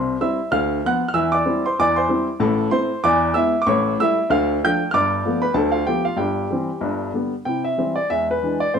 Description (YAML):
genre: jazz, stride piano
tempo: 190 BPM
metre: 4/4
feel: swing 58% on 8ths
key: C major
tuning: A4 = 440 Hz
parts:
  - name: clear baby grand piano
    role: solo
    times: 0.0-8.8 s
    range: G1 to G6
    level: -18 LUFS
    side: equal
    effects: none
room: wet small room ambience, RT60 0.5 s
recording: heard from further back in the room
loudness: -18 LUFS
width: side -7 dB against mid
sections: 0.0-7.5 A section; 7.5-8.8 B section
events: none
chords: 0.0 C; 0.5 Bdim/D; 1.1 C/E; 2.4 Am; 3.0 E7; 3.7 A7; 4.3 Dm; 4.9 G9; 6.2 C/G; 6.8 G; 7.5 C; 8.1 E7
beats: 0.19 0.51 0.83 | 1.14 1.46 1.77 2.09 | 2.41 2.72 3.04 3.36 | 3.67 3.99 4.30 4.62 | 4.94 5.25 5.57 5.88 | 6.20 6.52 6.83 7.15 | 7.47 7.78 8.10 8.42 | 8.74